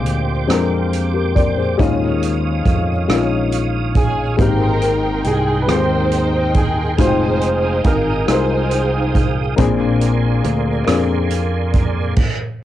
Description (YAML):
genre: slow gospel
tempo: 46 BPM (dotted quarters)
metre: 6/8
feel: straight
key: unclear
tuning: A4 = 440 Hz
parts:
  - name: dark upright piano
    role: accompaniment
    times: 0.0-12.2 s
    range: Ab2 to G5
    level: -20 LUFS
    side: left 5 dB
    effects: cassette tape
  - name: tonewheel organ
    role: sustained chords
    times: 0.0-12.1 s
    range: Ab4 to Eb6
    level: -27 LUFS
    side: right 9 dB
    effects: fast rotary speaker, chorus vibrato, cassette tape
  - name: fingered electric bass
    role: bass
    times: 0.0-12.1 s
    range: F1 to F2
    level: -20 LUFS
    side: right 1 dB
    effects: none
  - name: swinging big-band drum kit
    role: drums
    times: 0.1-12.4 s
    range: crash cymbal, hi-hat, kick drum, rim click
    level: -19 LUFS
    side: right 1 dB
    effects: cassette tape
  - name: clear baby grand piano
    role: melody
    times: 4.0-9.2 s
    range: Ab4 to C5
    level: -25 LUFS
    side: right 3 dB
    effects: cassette tape
  - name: dark studio string section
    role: melody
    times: 4.0-9.5 s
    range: Eb4 to G5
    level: -20 LUFS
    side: equal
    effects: cassette tape
room: light reverb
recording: home recording on cassette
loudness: -14 LUFS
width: side -12 dB against mid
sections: 0.0-12.6 A section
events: none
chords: 0.0 Bb13; 1.8 Eb9sus4; 4.4 Abmaj9; 7.0 Fm9; 9.6 Bb9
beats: 0.49 | 1.79 3.09 | 4.39 5.69 | 6.99 8.28 | 9.58 10.88 | 12.17